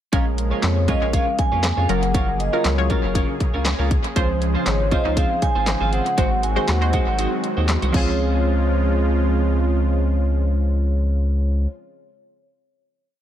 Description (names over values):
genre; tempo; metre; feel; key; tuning
dance-pop; 119 BPM; 4/4; straight; Db major; A4 = 440 Hz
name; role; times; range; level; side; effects
analog pluck; accompaniment; 0.1-11.7 s; Db3 to Db5; -26 LUFS; equal; chorus, sidechain pumping, tape echo
soft supersaw; sustained chords; 0.1-11.7 s; Db3 to C5; -28 LUFS; right 1 dB; sidechain pumping
twelve-string electric guitar; riff; 0.1-11.7 s; Ab3 to Db5; -28 LUFS; right 3 dB; lush chorus, tape echo
saturated sub bass; bass; 0.1-11.7 s; Gb1 to F2; -21 LUFS; equal; sidechain pumping
house drum kit; drums; 0.1-8.1 s; crash cymbal, handclaps, hi-hat, kick drum, snare drum; -23 LUFS; equal; tape echo
vibraphone with soft mallets; melody; 0.6-11.7 s; Db5 to Ab5; -26 LUFS; equal; tape echo
room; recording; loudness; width
digital ambience; echo-heavy mix; -18 LUFS; side -11 dB against mid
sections
0.1-8.2 pre-chorus; 8.2-12.2 final hit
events
kick muted 7.2-8.2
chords
0.1 Bbm7; 1.9 Gbmaj7; 4.2 Dbmaj7; 6.2 Ab7; 7.9 Dbmaj7